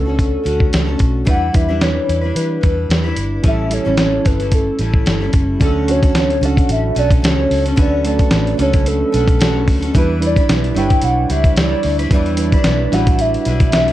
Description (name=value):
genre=indie pop, bedroom pop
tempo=111 BPM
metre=4/4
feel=swing 55% on 16ths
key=D major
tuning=A4 = 438 Hz
part: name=hollow clarinet-like synth lead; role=melody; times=0.0-13.9 s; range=A4 to G5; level=-20 LUFS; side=equal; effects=analog chorus, plate reverb
part: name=picked steel-string acoustic guitar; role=accompaniment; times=0.0-13.9 s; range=A2 to B4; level=-24 LUFS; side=left 3 dB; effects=lush chorus, warbly pitch drift
part: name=soft electric-piano-like synth keys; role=accompaniment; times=0.0-13.9 s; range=F#3 to C#5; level=-22 LUFS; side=right 4 dB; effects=chorus, cassette tape, plate reverb
part: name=vintage muted fingered electric bass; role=bass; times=0.0-13.9 s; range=F#1 to E3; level=-19 LUFS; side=equal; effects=none
part: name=dusty soul sampler-style drum kit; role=drums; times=0.2-13.9 s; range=hi-hat, kick drum, snare drum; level=-16 LUFS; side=equal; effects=none
room=light reverb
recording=dark, warm production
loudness=-13 LUFS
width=side -14 dB against mid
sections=0.0-5.6 A section; 5.6-13.9 B section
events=none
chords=0.0 Dmaj7; 1.3 Em7; 3.4 A7; 5.6 Dmaj7; 9.9 Em7